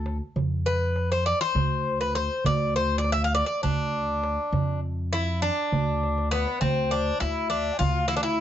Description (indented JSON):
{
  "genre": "Turkish makam ensemble",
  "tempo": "202 BPM (eighths)",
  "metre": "7/8",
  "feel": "straight",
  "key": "D makam nikriz",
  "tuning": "A4 = 440 Hz",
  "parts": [
    { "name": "Greek bouzouki", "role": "melody", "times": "0.0-8.4 s", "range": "B3 to F5", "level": "-26 LUFS", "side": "left 1 dB", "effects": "none" },
    { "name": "upright bass", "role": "bass", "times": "0.0-8.4 s", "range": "D2 to F2", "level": "-28 LUFS", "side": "equal", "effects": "none" },
    { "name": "darbuka", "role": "percussion", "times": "0.1-8.3 s", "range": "none", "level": "-30 LUFS", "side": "right 4 dB", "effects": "none" },
    { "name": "breathy ney", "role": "second line", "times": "6.3-8.4 s", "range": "B4 to G#5", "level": "-30 LUFS", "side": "left 9 dB", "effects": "none" }
  ],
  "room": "light reverb",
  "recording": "dark, warm production, nothing above 7.8 kHz",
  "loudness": "-23 LUFS",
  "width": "side -10 dB against mid",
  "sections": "0.0-6.6 A section; 6.6-8.4 B section",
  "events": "drum fill 6.0-6.6",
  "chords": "none"
}